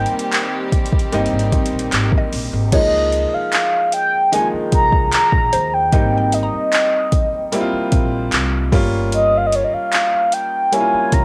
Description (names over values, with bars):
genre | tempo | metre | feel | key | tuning
contemporary R&B | 75 BPM | 4/4 | straight | unclear | A4 = 439 Hz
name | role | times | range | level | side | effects
mellow horn-like synth lead | melody | 0.0-11.2 s | Db5 to Bb5 | -19 LUFS | equal | chorus, cassette tape
warm baby grand piano | accompaniment | 0.0-11.2 s | Eb3 to F4 | -25 LUFS | equal | cassette tape
warm chamber string section | sustained chords | 0.0-2.7 s | Eb3 to G4 | -30 LUFS | equal | cassette tape
upright bass | bass | 0.0-11.2 s | G1 to Eb2 | -24 LUFS | equal | none
smooth R&B drum kit | drums | 0.1-11.2 s | crash cymbal, handclaps, hi-hat, kick drum | -21 LUFS | equal | cassette tape
mallet-like synth pluck | texture | 1.9-8.5 s | Bb4 to Bb5 | -31 LUFS | equal | chorus, phaser, cassette tape, analog delay
room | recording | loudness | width
light reverb | home recording on cassette | -17 LUFS | mono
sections
0.0-2.7 A section; 2.7-11.2 A section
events
none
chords
0.0 Abmaj9; 2.7 Db69; 5.9 Abmaj7; 8.7 Eb9/G